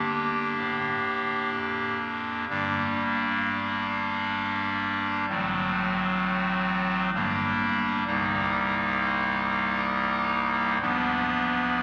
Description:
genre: classical, chorale-style piece for pipe organ.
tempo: 65 BPM.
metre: 3/4.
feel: rubato.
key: G minor.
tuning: A4 = 438 Hz.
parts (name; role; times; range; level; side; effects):
pipe organ, clarinet reed; solo; 0.0-11.8 s; C1 to G4; -26 LUFS; equal; none.
room: wet church reverb, RT60 3.1 s.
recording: none.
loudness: -26 LUFS.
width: mono.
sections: 0.0-2.5 A section; 2.5-11.8 B section.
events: none.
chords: 0.0 Gm; 5.3 F#dim/A; 7.1 Gm; 8.1 Cm7; 10.8 Bdim/D.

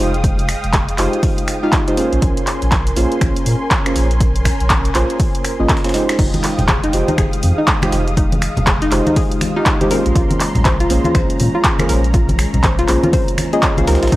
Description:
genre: deep house.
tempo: 121 BPM.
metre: 4/4.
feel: swing 61% on 16ths.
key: unclear.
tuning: A4 = 437 Hz.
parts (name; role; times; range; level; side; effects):
warm analog pad; sustained chords; 0.0-14.2 s; Ab3 to Eb6; -25 LUFS; left 1 dB; chorus, sidechain pumping.
deep mellow chord stab; stabs; 0.0-14.2 s; Ab3 to F5; -20 LUFS; right 1 dB; chorus, sidechain pumping, tape echo.
warm sub bass; bass; 0.0-14.2 s; F1 to Bb2; -18 LUFS; equal; sidechain pumping.
deep house drum kit; drums; 0.1-14.2 s; crash cymbal, finger snaps, handclaps, hi-hat; -21 LUFS; equal; overdrive, small room ambience.
breakbeat sampler-style drum kit; drums; 0.2-14.2 s; hi-hat, snare drum; -33 LUFS; left 1 dB; none.
electronic kick drum; drums; 0.2-14.2 s; none; -18 LUFS; equal; overdrive, small room ambience.
soft round pluck; arpeggios; 6.2-14.2 s; Eb4 to F5; -22 LUFS; left 1 dB; chorus, sidechain pumping, tape echo.
congas; percussion; 6.3-13.9 s; none; -22 LUFS; left 1 dB; none.
room: light reverb.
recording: dry, gritty hardware recording, vinyl crackle.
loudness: -13 LUFS.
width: side -17 dB against mid.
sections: 0.0-14.2 A section.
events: none.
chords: 0.0 Fm9; 2.0 Bbm9; 6.2 Fm9; 9.9 Bbm9.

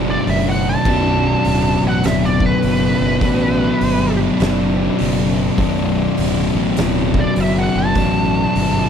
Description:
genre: stoner and doom metal.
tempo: 101 BPM.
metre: 4/4.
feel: swing 63% on 8ths.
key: B minor.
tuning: A4 = 440 Hz.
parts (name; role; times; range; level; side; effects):
overdriven electric guitar; riff; 0.0-8.9 s; B1 to D4; -23 LUFS; equal; none.
thick fuzz guitar; riff; 0.0-8.9 s; B1 to B2; -19 LUFS; left 9 dB; distortion.
thick fuzz guitar; riff; 0.0-8.9 s; B1 to B2; -22 LUFS; right 9 dB; distortion.
fuzz fingered electric bass; bass; 0.0-8.9 s; B0 to A1; -21 LUFS; right 1 dB; overdrive.
fuzz lead guitar; melody; 0.1-8.9 s; B4 to A5; -22 LUFS; right 1 dB; wah, distortion, tape echo.
oversized low-tuned drum kit; drums; 0.3-8.7 s; crash cymbal, hi-hat, kick drum, snare drum; -25 LUFS; right 1 dB; none.
room: small room ambience.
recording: none.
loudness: -14 LUFS.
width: side -8 dB against mid.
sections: 0.0-8.9 A section.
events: lead electric guitar solo 0.0-8.9.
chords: 0.0 Bm.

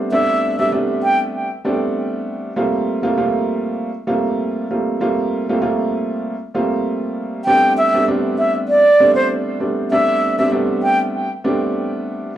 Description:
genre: hip hop.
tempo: 98 BPM.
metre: 4/4.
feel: swing 55% on 16ths.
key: A minor.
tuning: A4 = 440 Hz.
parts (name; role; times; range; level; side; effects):
warm upright piano; accompaniment; 0.0-12.3 s; G3 to F4; -19 LUFS; right 1 dB; cassette tape.
breathy concert flute; melody; 0.1-1.2, 7.5-11.0 s; C5 to G5; -16 LUFS; right 1 dB; analog delay.
room: moderate studio reverb, RT60 0.7 s.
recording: dry, gritty hardware recording, small room ambience.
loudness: -16 LUFS.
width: side -12 dB against mid.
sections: 0.0-7.5 A section; 7.5-12.4 B section.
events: none.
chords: 0.0 Am11; 2.6 Gm11; 7.5 Am11.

